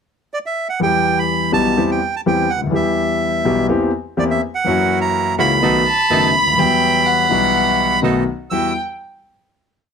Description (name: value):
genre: tango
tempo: 125 BPM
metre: 4/4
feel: rubato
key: E minor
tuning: A4 = 440 Hz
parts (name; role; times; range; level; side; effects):
- bandoneon; melody; 0.3-8.7 s; D5 to E6; -17 LUFS; right 4 dB; none
- warm concert grand piano; accompaniment; 0.8-8.7 s; F#1 to G4; -17 LUFS; left 3 dB; none
- bandoneon; stabs; 4.7-8.7 s; F#3 to A4; -25 LUFS; right 7 dB; none
- warm violin; second line; 5.9-8.7 s; F#5 to B5; -20 LUFS; left 3 dB; none
room: light reverb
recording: close, detailed microphones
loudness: -14 LUFS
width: side -6 dB against mid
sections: 0.0-0.8 pickup bar; 0.8-8.5 A section; 8.5-9.9 final chord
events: none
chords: 0.0 N.C.; 0.8 Em; 1.8 C/E; 2.7 Em; 3.7 C7/E; 4.7 F#7; 5.6 B7; 6.6 Emadd9; 8.0 B7; 8.5 Emadd9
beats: 0.32 | 0.81 1.29 1.77 2.26 | 2.74 3.22 3.70 4.18 | 4.66 5.14 5.62 6.11 | 6.59 7.07 7.55 8.03 | 8.52